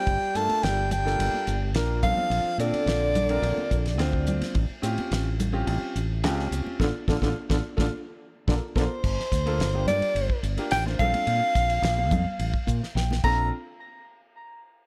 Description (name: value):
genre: electric jazz fusion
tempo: 107 BPM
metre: 4/4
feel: straight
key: Bb major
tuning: A4 = 440 Hz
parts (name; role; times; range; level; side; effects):
- breathy soprano saxophone; melody; 0.0-4.2, 8.8-13.5 s; C5 to Bb5; -29 LUFS; equal; none
- trombone with bucket mute; second line; 0.0-8.8 s; D3 to A3; -35 LUFS; equal; none
- clear baby grand piano; accompaniment; 0.0-13.5 s; Bb3 to G5; -35 LUFS; equal; none
- fingered electric bass; bass; 0.1-13.5 s; G1 to Bb2; -30 LUFS; equal; none
- damped 70s drum kit; drums; 0.1-13.4 s; crash cymbal, hi-hat, kick drum, ride cymbal, snare drum; -32 LUFS; equal; none
- congas; percussion; 0.5-13.5 s; none; -37 LUFS; equal; none
room: light reverb, small room ambience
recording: none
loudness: -25 LUFS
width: mono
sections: 0.0-9.0 A section; 9.0-13.5 B section; 13.5-14.9 C section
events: grand piano fill 3.7-4.6, 7.4-9.0, 12.7-13.5; band accent 6.8-9.0; drum fill 8.5-9.0, 13.0-13.5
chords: 0.1 Gm9; 2.0 Bbmaj9; 4.6 A7alt; 6.8 Dm/A; 7.9 Bbmaj7(no3); 9.0 Gm9; 11.0 Bbmaj9; 13.5 N.C.